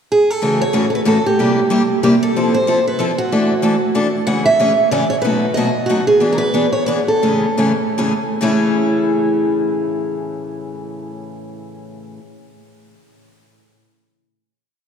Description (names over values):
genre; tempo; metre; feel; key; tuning
jazz; 131-187 BPM; 3/4; swing 60% on 8ths; A major; A4 = 440 Hz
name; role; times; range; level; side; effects
picked steel-string acoustic guitar; melody; 0.1-12.2 s; E4 to F#5; -17 LUFS; right 1 dB; none
picked steel-string acoustic guitar; accompaniment; 0.4-12.2 s; A2 to A4; -17 LUFS; left 1 dB; none
room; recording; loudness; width
wet cathedral reverb, RT60 4.1 s; recorded in a church or concert hall; -14 LUFS; side -7 dB against mid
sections
0.0-0.4 pickup bar; 0.4-8.4 A section; 8.4-11.2 final chord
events
slowing down 6.2-8.4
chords
0.4 A6; 1.4 C7; 2.4 Fmaj7; 3.3 E9sus4; 4.3 Amaj7; 5.2 B7; 6.2 E7; 7.2 Amaj7